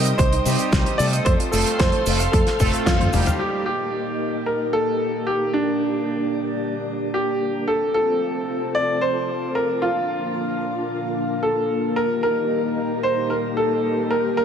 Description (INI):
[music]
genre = italo disco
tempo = 112 BPM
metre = 4/4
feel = straight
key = unclear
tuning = A4 = 440 Hz
[part]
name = warm grand piano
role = melody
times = 0.0-14.4 s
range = D4 to D5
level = -22 LUFS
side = right 1 dB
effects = tape echo, shimmer reverb
[part]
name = string machine, full ensemble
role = sustained chords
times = 0.0-14.4 s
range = Bb3 to Eb6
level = -25 LUFS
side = left 1 dB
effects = ensemble chorus, shimmer reverb
[part]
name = soft round pluck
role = arpeggios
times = 0.0-3.4 s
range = G3 to F5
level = -30 LUFS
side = left 5 dB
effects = chorus, ping-pong delay, shimmer reverb
[part]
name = analog synth brass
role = stabs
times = 0.0-3.6 s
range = G3 to A4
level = -29 LUFS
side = right 2 dB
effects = chorus, cassette tape, ping-pong delay, shimmer reverb
[part]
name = fingered electric bass with an envelope filter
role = bass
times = 0.0-3.2 s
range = F1 to C3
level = -23 LUFS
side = equal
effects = none
[part]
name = damped 70s drum kit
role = drums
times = 0.1-3.4 s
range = cabasa, hi-hat, snare drum, toms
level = -24 LUFS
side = right 1 dB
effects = small room ambience, gated reverb
[part]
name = electronic kick drum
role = drums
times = 0.2-3.0 s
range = none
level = -21 LUFS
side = equal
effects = small room ambience
[sound]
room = moderate plate reverb, RT60 3.2 s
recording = none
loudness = -19 LUFS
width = side -8 dB against mid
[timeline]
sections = 0.0-3.4 A section; 3.4-14.4 B section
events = drum fill 2.6-3.4; band accent 2.9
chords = 0.0 Cm; 1.3 F; 3.4 Eb; 5.5 Gm; 7.7 F; 9.8 Bb; 12.0 Eb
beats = 0.19 0.73 | 1.26 1.80 2.33 2.87 | 3.40 3.94 4.48 5.01 | 5.55 6.08 6.62 7.15 | 7.69 8.23 8.76 9.30 | 9.83 10.37 10.90 11.44 | 11.98 12.51 13.05 13.58 | 14.12